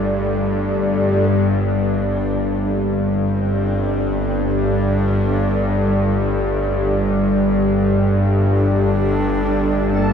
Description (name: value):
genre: dark ambient drone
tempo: free time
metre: none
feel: none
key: unclear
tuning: A4 = 441 Hz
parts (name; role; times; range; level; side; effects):
- dark analog pad; sustained chords; 0.0-10.1 s; G4 to D5; -24 LUFS; equal; chorus
- bowed-like drone; drone; 0.0-10.1 s; G1 to G2; -17 LUFS; equal; built-in reverb
- dark horsehead fiddle; melody; 1.3-10.1 s; Bb3 to D4; -30 LUFS; right 1 dB; diffuse ambient delay
- backwards swelling texture; texture; 9.0-10.1 s; A4; -28 LUFS; equal; built-in reverb
room: wet huge ambient reverb, RT60 7.2 s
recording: dark, warm production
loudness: -16 LUFS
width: side -7 dB against mid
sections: 0.0-1.3 A section; 1.3-10.1 B section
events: fade-in on analog synth pad 1.3-10.1; fade-in on horsehead fiddle 1.3-10.1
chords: 0.0 Gsus2